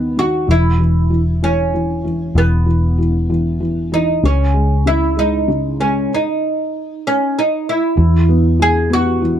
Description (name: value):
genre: six-eight pop ballad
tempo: 64 BPM (dotted quarters)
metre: 6/8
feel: straight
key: E major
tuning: A4 = 442 Hz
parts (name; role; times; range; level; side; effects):
- oud; melody; 0.0-9.4 s; B3 to G#4; -18 LUFS; right 2 dB; none
- felt-muted upright piano; accompaniment; 0.0-9.4 s; C#3 to B3; -18 LUFS; left 1 dB; none
- vintage muted fingered electric bass; bass; 0.0-9.4 s; E1 to E2; -16 LUFS; equal; none
room: little or no reverb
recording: dry, close 1970s-style studio recording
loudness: -13 LUFS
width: side -9 dB against mid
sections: 0.0-8.0 A section; 8.0-9.4 B section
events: stop 6.1-8.0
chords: 0.5 E5; 4.2 C#5; 6.1 N.C.; 8.0 E5